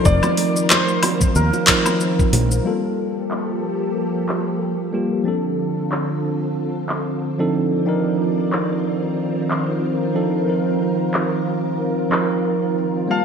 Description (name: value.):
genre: sunset chillout.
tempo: 92 BPM.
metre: 4/4.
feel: swing 55% on 16ths.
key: G minor.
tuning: A4 = 444 Hz.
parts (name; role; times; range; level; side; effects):
warm grand piano; melody; 0.0-2.0, 13.1-13.2 s; Bb4 to F5; -23 LUFS; left 2 dB; analog chorus, ping-pong delay.
tine electric piano; accompaniment; 0.0-13.2 s; F3 to A5; -21 LUFS; moving between left 3 dB and right 3 dB; auto-pan, low-pass filter, ping-pong delay.
soft string machine; sustained chords; 0.0-13.2 s; D3 to A5; -24 LUFS; equal; ensemble chorus.
fingered electric bass; bass; 0.1-2.6 s; F1 to Eb2; -18 LUFS; equal; tube saturation.
deep house drum kit; drums; 0.1-13.2 s; handclaps, hi-hat, shaker, woodblock; -20 LUFS; left 1 dB; overdrive, low-pass filter on perc, low-pass filter on hats, low-pass filter on snare, gated reverb.
electronic kick drum; drums; 0.1-2.3 s; none; -19 LUFS; equal; none.
congas and bongos; percussion; 0.2-2.5 s; none; -29 LUFS; right 4 dB; none.
room: wet plate reverb, RT60 2.3 s.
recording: bright 1980s-style digital production.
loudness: -18 LUFS.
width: side -6 dB against mid.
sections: 0.0-2.7 A section; 2.7-13.2 B section.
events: none.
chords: 0.1 F7sus4; 2.7 Gm9; 5.3 Dm7; 7.6 Cm11; 10.5 F7sus4.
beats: | 0.06 0.71 1.36 2.01 | 2.66 3.32 3.97 4.62 | 5.27 5.92 6.58 7.23 | 7.88 8.53 9.19 9.84 | 10.49 11.14 11.79 12.45 | 13.10.